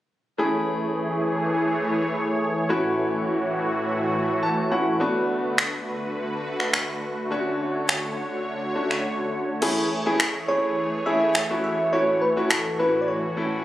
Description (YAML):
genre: dance-pop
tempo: 104 BPM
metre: 4/4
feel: straight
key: A major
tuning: A4 = 440 Hz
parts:
  - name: bright grand piano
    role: accompaniment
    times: 0.4-13.6 s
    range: A3 to A5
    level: -27 LUFS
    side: left 1 dB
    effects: none
  - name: filtered supersaw swell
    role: sustained chords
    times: 0.4-13.6 s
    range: A2 to C#5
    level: -26 LUFS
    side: equal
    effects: none
  - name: smooth R&B drum kit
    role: drums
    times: 5.6-12.6 s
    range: crash cymbal, finger snaps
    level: -24 LUFS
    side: equal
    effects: none
  - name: soft struck synth lead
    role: melody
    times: 10.5-13.6 s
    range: A4 to E5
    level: -23 LUFS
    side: equal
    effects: chorus
room: moderate lush hall reverb, RT60 2.2 s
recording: recorded on a phone in the room, studio reverb, compression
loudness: -22 LUFS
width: side -14 dB against mid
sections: 0.4-9.6 A section; 9.6-13.6 B section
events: grand piano fill 4.1-5.0; drums muted 9.0-9.6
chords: 0.4 Amaj7; 2.7 F#m7/A; 5.0 Bm7; 7.3 Dmaj7; 9.6 Amaj7; 11.9 F#m7/A